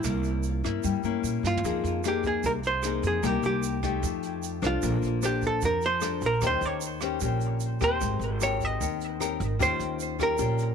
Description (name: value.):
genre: bossa nova.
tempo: 151 BPM.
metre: 4/4.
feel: straight.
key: F minor.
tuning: A4 = 438 Hz.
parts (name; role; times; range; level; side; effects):
archtop guitar, miked and amplified; melody; 0.0-10.7 s; E4 to Eb5; -29 LUFS; right 3 dB; tape echo.
nylon-string guitar; accompaniment; 0.0-10.7 s; Bb2 to C5; -30 LUFS; left 13 dB; none.
upright bass; bass; 0.0-10.7 s; Ab1 to Bb2; -30 LUFS; right 2 dB; none.
jazz brush drum kit; drums; 0.0-10.7 s; hi-hat, kick drum, rim click, snare drum, toms; -37 LUFS; right 8 dB; none.
tube shaker; percussion; 0.0-10.7 s; none; -41 LUFS; right 22 dB; none.
room: light reverb, studio ambience.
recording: 1960s-style stereo with parts hard left and right.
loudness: -25 LUFS.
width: side -6 dB against mid.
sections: 0.0-1.6 A section; 1.6-10.7 B section.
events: drum fill 1.4.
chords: 0.0 C7b9; 1.6 Fm7; 3.2 Cm7; 4.0 F9; 4.8 Bbmaj9; 6.4 Eb6; 8.0 Abmaj9; 9.6 Eb9.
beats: | 0.04 0.44 0.84 1.24 | 1.64 2.04 2.44 2.83 | 3.23 3.63 4.03 4.43 | 4.83 5.22 5.62 6.02 | 6.42 6.82 7.21 7.61 | 8.01 8.41 8.80 9.20 | 9.60 9.99 10.39.